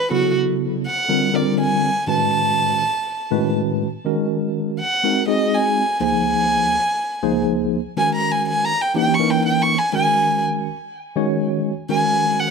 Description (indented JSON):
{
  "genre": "jazz",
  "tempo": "122 BPM",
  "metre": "4/4",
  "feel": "straight",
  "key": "unclear",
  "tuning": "A4 = 440 Hz",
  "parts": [
    { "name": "warm violin", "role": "melody", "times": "0.0-12.5 s", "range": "F#4 to C#6", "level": "-20 LUFS", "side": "right 1 dB", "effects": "none" },
    { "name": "tine electric piano", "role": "accompaniment", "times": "0.1-12.5 s", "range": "C#2 to C#5", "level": "-20 LUFS", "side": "equal", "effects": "medium stereo tremolo" }
  ],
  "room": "moderate club reverb, RT60 0.7 s",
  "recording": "dark, warm production",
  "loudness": "-17 LUFS",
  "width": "side -5 dB against mid",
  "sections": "0.0-12.5 A section",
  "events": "violin solo 0.0-12.5",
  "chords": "0.1 B9sus4; 1.1 A#13; 2.1 Amaj7; 4.0 D#m7; 5.0 G#7; 6.0 C#maj7; 8.0 F#69/D#; 9.0 D#7b9; 9.9 G#9sus4",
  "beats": "| 0.11 0.60 1.09 1.58 | 2.08 2.57 3.06 3.55 | 4.04 4.54 5.03 5.52 | 6.01 6.50 6.99 7.48 | 7.97 8.46 8.95 9.44 | 9.93 10.42 10.91 11.40 | 11.90 12.39"
}